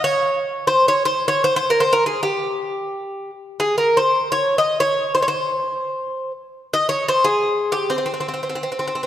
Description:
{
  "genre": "Turkish makam ensemble",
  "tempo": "free time",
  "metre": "none",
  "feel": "none",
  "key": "C makam kurdi",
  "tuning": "A4 = 440 Hz",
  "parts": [
    { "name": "Greek bouzouki", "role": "solo", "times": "0.0-9.1 s", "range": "C4 to Eb5", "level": "-18 LUFS", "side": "equal", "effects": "none" }
  ],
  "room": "wet concert hall reverb, RT60 2.1 s",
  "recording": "none",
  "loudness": "-17 LUFS",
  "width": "side -11 dB against mid",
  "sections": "0.0-9.1 A section",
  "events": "none",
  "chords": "none"
}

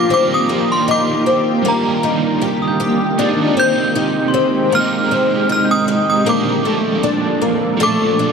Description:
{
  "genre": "dream pop",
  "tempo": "78 BPM",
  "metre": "4/4",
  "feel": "straight",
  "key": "unclear",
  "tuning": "A4 = 440 Hz",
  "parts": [
    { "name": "synth chime", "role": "melody", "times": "0.0-8.3 s", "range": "Bb5 to G6", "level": "-20 LUFS", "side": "right 1 dB", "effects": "ensemble chorus, ping-pong delay" },
    { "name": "crunchy overdriven guitar", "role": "accompaniment", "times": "0.0-8.3 s", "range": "Bb2 to A4", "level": "-20 LUFS", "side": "right 6 dB", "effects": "tremolo, analog chorus" },
    { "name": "shimmering ambient pad", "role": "sustained chords", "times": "0.0-8.3 s", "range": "Bb2 to A4", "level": "-20 LUFS", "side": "equal", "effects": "chorus, built-in reverb" },
    { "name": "picked twelve-string acoustic guitar", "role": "arpeggios", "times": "0.0-8.3 s", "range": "A3 to G4", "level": "-18 LUFS", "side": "left 4 dB", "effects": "analog chorus, ping-pong delay" },
    { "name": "glockenspiel with soft plastic mallets", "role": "texture", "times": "0.0-6.6 s", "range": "C6 to Bb6", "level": "-30 LUFS", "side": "equal", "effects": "ping-pong delay" }
  ],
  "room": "moderate plate reverb, RT60 3.6 s",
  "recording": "dark, warm production",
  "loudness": "-13 LUFS",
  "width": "side -6 dB against mid",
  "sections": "0.0-8.3 A section",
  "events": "none",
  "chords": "0.1 Ebmaj7; 3.2 Abmaj7; 6.3 Bbmaj7"
}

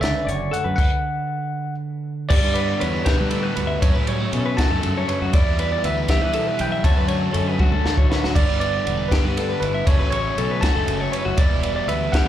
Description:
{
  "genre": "math rock and midwest emo",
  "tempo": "79 BPM (dotted quarters)",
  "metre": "6/8",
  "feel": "straight",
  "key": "G lydian",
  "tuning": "A4 = 440 Hz",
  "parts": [
    { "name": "bell-like tine electric piano", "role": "melody", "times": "0.0-12.3 s", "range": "B4 to A5", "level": "-26 LUFS", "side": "right 1 dB", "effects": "fast stereo tremolo, slapback echo" },
    { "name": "electric guitar at the edge of break-up", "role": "accompaniment", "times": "0.0-12.3 s", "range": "D2 to F#4", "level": "-28 LUFS", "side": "right 4 dB", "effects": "none" },
    { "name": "clean electric guitar", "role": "arpeggios", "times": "0.0-12.3 s", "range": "F#4 to E5", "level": "-28 LUFS", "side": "left 6 dB", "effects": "spring reverb, slapback echo, analog delay" },
    { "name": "growling fingered electric bass", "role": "bass", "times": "0.0-12.3 s", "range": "E1 to G3", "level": "-25 LUFS", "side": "equal", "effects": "overdrive" },
    { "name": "compact cocktail drum kit", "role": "drums", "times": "0.0-12.3 s", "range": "crash cymbal, hi-hat, kick drum, ride cymbal, snare drum, toms", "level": "-22 LUFS", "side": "equal", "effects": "none" },
    { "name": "overdriven electric guitar", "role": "riff", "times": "2.3-12.3 s", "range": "F#2 to E4", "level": "-28 LUFS", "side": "left 1 dB", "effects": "slapback echo" }
  ],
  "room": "small room ambience",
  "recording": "live gig heard through the venue's PA, club reverb",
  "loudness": "-18 LUFS",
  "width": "side -11 dB against mid",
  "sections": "0.0-2.3 A section; 2.3-12.3 B section",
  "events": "drum fill 7.6-8.4",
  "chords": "0.0 Dmaj7/F#; 2.3 G6; 3.8 F#m7; 5.3 Em7; 6.8 Dmaj7; 8.4 G6; 9.9 F#m7; 11.4 Em7"
}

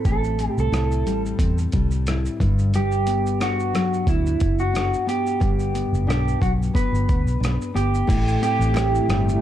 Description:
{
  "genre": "indie pop, bedroom pop",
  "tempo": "90 BPM",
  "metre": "4/4",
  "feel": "swing 55% on 16ths",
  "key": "A dorian",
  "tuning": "A4 = 439 Hz",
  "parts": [
    { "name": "electric guitar through a small old amp", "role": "melody", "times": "0.0-9.4 s", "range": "E4 to B4", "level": "-25 LUFS", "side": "right 3 dB", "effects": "lush chorus, tape echo" },
    { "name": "nylon-string guitar", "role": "accompaniment", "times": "0.0-9.4 s", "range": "G2 to E4", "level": "-25 LUFS", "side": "left 3 dB", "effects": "wide subtle chorus, warbly pitch drift" },
    { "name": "vintage muted fingered electric bass", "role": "bass", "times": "0.1-9.4 s", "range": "F#1 to E2", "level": "-23 LUFS", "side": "equal", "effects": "none" },
    { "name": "dusty soul sampler-style drum kit", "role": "drums", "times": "0.1-9.4 s", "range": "crash cymbal, hi-hat, kick drum, rim click, shaker", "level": "-24 LUFS", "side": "equal", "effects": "overdrive" },
    { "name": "granular cloud pad", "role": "sustained chords", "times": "8.9-9.4 s", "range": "E3 to E4", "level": "-29 LUFS", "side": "equal", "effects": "built-in reverb" },
    { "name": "group handclap", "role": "percussion", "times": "8.7-8.9 s", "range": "none", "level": "-40 LUFS", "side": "right 5 dB", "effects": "none" }
  ],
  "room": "light reverb, digital ambience",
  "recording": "cassette tape",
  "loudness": "-19 LUFS",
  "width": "side -11 dB against mid",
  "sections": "0.0-8.1 A section; 8.1-9.4 B section",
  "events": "none",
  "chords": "0.0 Am7; 2.4 Gmaj7; 8.1 Am7"
}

